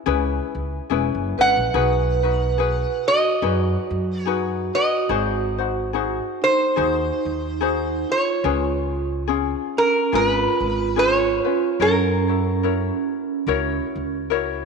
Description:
Hawaiian; 72 BPM; 4/4; swing 58% on 8ths; B major; A4 = 440 Hz
ukulele; accompaniment; 0.0-14.7 s; C#4 to C#5; -25 LUFS; left 11 dB
upright bass; bass; 0.1-14.7 s; E1 to F#2; -26 LUFS; equal
metal-body resonator slide guitar; melody; 1.4-14.3 s; A#4 to F#5; -21 LUFS; right 1 dB
vibraphone with soft mallets; second line; 1.4-14.3 s; C#4 to B4; -25 LUFS; right 12 dB
moderate plate reverb, RT60 2.7 s; 1960s-style stereo with parts hard left and right; -19 LUFS; side -5 dB against mid
0.0-14.7 A section
0.0 F#9sus4; 1.7 B6; 5.1 G#7; 8.4 C#7; 11.8 F#7

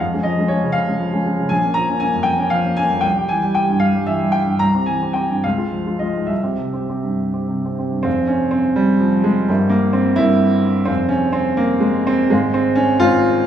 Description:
classical, romantic character piece for solo piano; 66-89 BPM (dotted quarters); 6/8; rubato; F minor; A4 = 439 Hz
clear baby grand piano; solo; 0.0-13.5 s; F1 to Bb5; -15 LUFS; equal
wet large studio reverb, RT60 1.4 s; heard from further back in the room; -15 LUFS; side -9 dB against mid
0.0-8.1 A section; 8.1-13.5 B section
0.0 Db/F; 1.5 Bbm; 3.0 C; 5.4 Db; 6.3 C; 8.1 Fm; 9.5 C7/G; 10.9 Fm; 12.3 Fm/Ab

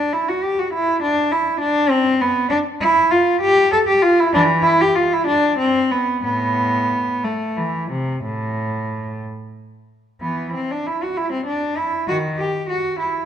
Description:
classical, baroque-style suite movement for unaccompanied cello; 60-69 BPM (dotted quarters); 12/8; rubato; A minor, E minor from 10.2 s; A4 = 440 Hz
rich cello; solo; 0.0-13.3 s; A2 to A4; -16 LUFS; equal
moderate recital hall reverb, RT60 1.7 s; dark, warm production; -16 LUFS; side -9 dB against mid
0.0-10.2 A section; 10.2-13.3 A section

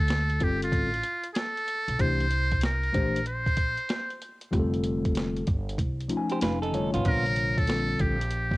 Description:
hip hop, jazz-hop; 95 BPM; 4/4; swing 65% on 16ths; A4 = 440 Hz
trumpet with metal mute; melody; 0.0-8.6 s; F4 to C5; -29 LUFS; equal; cassette tape
upright bass; bass; 0.0-8.6 s; F1 to D2; -29 LUFS; equal
boom bap sampler-style drum kit; drums; 0.1-8.6 s; hi-hat, kick drum, snare drum; -29 LUFS; equal; cassette tape
mellow tine electric piano; accompaniment; 0.4-8.2 s; C3 to G#5; -29 LUFS; left 2 dB; cassette tape
clean electric guitar; second line; 6.3-7.2 s; B3 to C5; -31 LUFS; right 4 dB; cassette tape
little or no reverb; home recording on cassette; -24 LUFS; side -20 dB against mid
0.0-8.6 A section
0.0 Dm7; 2.0 C9; 4.5 F9; 7.0 Bb6

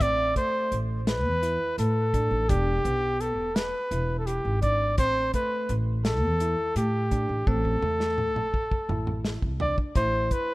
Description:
progressive instrumental, band music in an uneven meter; 169 BPM (eighths); 7/8; straight; A minor; A4 = 442 Hz
breathy trumpet; melody; 0.0-10.5 s; G4 to D5; -26 LUFS; equal
bell-like tine electric piano; arpeggios; 0.0-10.5 s; A3 to E4; -36 LUFS; right 3 dB; analog delay
upright bass; bass; 0.0-10.3 s; E1 to A2; -28 LUFS; equal
warm soul drum kit; drums; 0.0-10.5 s; hi-hat, kick drum, snare drum, toms; -28 LUFS; equal
light reverb, small room reverb; rough home demo mix; -24 LUFS; side -20 dB against mid
0.0-10.0 A section
drum fill 7.5-10.0
0.0 Amadd9; 2.5 Em7; 5.0 Am; 10.0 Amadd9

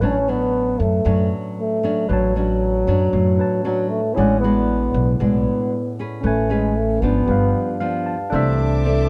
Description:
bossa nova; 115 BPM; 4/4; straight; A4 = 441 Hz
breathy trombone; melody; 0.0-9.1 s; F#3 to C#4; -23 LUFS; equal
barky tine electric piano; accompaniment; 0.0-9.1 s; C#4 to A5; -30 LUFS; equal
nylon-string guitar; accompaniment; 0.0-9.1 s; G2 to B4; -26 LUFS; equal
upright bass; bass; 0.0-9.1 s; G1 to F#2; -23 LUFS; equal
warm studio violin section; sustained chords; 8.3-9.1 s; C5 to D6; -36 LUFS; equal
little or no reverb; dark, warm production; -19 LUFS; mono
0.0-8.3 A section
tine electric piano fill 7.5-8.3
0.0 Bm9/A; 4.2 E9/A; 6.2 Amaj9; 7.3 G7; 8.3 C69

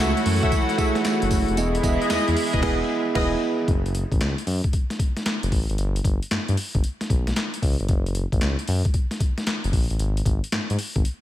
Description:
R&B, new jack swing; 114 BPM; 4/4; swing 66% on 16ths; F# dorian; A4 = 438 Hz
bell-like tine electric piano; accompaniment; 0.0-3.7 s; G#3 to D#5; -25 LUFS; right 4 dB
lush unison pad; sustained chords; 0.0-3.7 s; E3 to F#4; -26 LUFS; equal; chorus
warm horn section; stabs; 0.0-3.3 s; E4 to E5; -29 LUFS; left 2 dB; tape echo
smooth synth bass; bass; 0.0-11.0 s; E1 to G#2; -24 LUFS; left 1 dB
boom bap sampler-style drum kit; drums; 0.0-11.2 s; crash cymbal, handclaps, hi-hat, kick drum, snare drum, tambourine; -24 LUFS; left 1 dB; overdrive, gated reverb
digital ambience; -20 LUFS; side -13 dB against mid
0.0-3.7 A section; 3.7-11.2 B section
band accent 2.6-3.7
0.0 F#m7; 1.6 Emaj7; 3.7 F#m; 5.8 G; 7.9 N.C.

